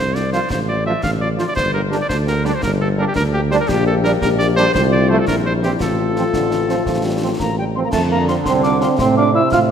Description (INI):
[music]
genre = military-style march for wind band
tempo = 113 BPM (dotted quarters)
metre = 6/8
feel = straight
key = F major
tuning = A4 = 439 Hz
[part]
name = warm cornet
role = melody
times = 0.0-9.4 s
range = G4 to F5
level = -21 LUFS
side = equal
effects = none
[part]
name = mellow tuba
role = bass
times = 0.0-9.7 s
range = G1 to A2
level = -19 LUFS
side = right 1 dB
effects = none
[part]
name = mellow French horn section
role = accompaniment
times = 0.2-9.7 s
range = G3 to G4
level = -24 LUFS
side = left 8 dB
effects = none
[part]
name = concert snare drum, concert bass drum and clash cymbals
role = drums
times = 0.2-9.7 s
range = none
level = -27 LUFS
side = left 1 dB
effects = none
[part]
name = bright trombone section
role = sustained chords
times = 0.3-9.7 s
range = C3 to F4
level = -23 LUFS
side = right 3 dB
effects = none
[part]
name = clear euphonium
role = second line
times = 6.3-9.6 s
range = D3 to F4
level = -19 LUFS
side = right 3 dB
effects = none
[part]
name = mellow piccolo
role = second line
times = 7.4-9.6 s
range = G5 to F6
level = -21 LUFS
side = left 3 dB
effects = none
[sound]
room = moderate scoring stage reverb, RT60 1.8 s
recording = none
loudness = -15 LUFS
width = side -8 dB against mid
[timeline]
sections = 0.0-7.9 A section; 7.9-9.7 A section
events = none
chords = 0.0 F; 0.5 F/A; 1.6 Gm; 3.7 Gm/Bb; 4.7 F/C; 5.3 C7/Bb; 5.8 F/A; 7.9 F; 9.0 F/A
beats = | 0.50 1.03 | 1.56 2.10 | 2.62 3.16 | 3.69 4.22 | 4.75 5.28 | 5.81 6.34 | 6.87 7.40 | 7.93 8.46 | 8.99 9.52